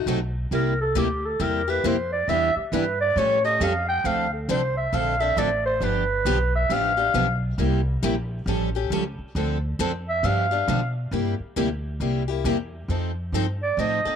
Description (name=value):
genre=acoustic string swing (jazz manouche)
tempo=136 BPM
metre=4/4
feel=swing 62% on 8ths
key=unclear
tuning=A4 = 440 Hz
part: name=picked steel-string acoustic guitar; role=accompaniment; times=0.0-14.2 s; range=C3 to A4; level=-29 LUFS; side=left 13 dB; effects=none
part: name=upright bass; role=bass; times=0.0-14.1 s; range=G1 to B2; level=-27 LUFS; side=equal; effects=none
part: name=picked plugged-in steel-string acoustic guitar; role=accompaniment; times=0.1-14.0 s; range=C3 to B4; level=-30 LUFS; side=right 13 dB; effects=none
part: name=growling clarinet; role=melody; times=0.5-7.4, 10.1-11.0, 13.6-14.2 s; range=G4 to G5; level=-23 LUFS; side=right 1 dB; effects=slapback echo
room=moderate spring reverb, RT60 2.2 s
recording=1960s-style stereo with parts hard left and right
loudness=-21 LUFS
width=side -8 dB against mid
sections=0.0-11.1 A section; 11.1-14.2 A section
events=clarinet solo 0.0-14.2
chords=0.0 F#dim7; 0.5 C7; 2.3 Em7; 3.2 Aaug7; 4.0 Dm7; 5.8 G7; 7.6 C7; 8.5 Aaug7; 9.3 Dm7; 10.2 G7; 11.1 C7; 12.9 F7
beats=0.06 | 0.51 0.95 1.39 1.83 | 2.28 2.72 3.16 3.60 | 4.04 4.49 4.93 5.37 | 5.81 6.25 6.70 7.14 | 7.58 8.02 8.47 8.91 | 9.35 9.79 10.23 10.68 | 11.12 11.56 12.00 12.44 | 12.89 13.33 13.77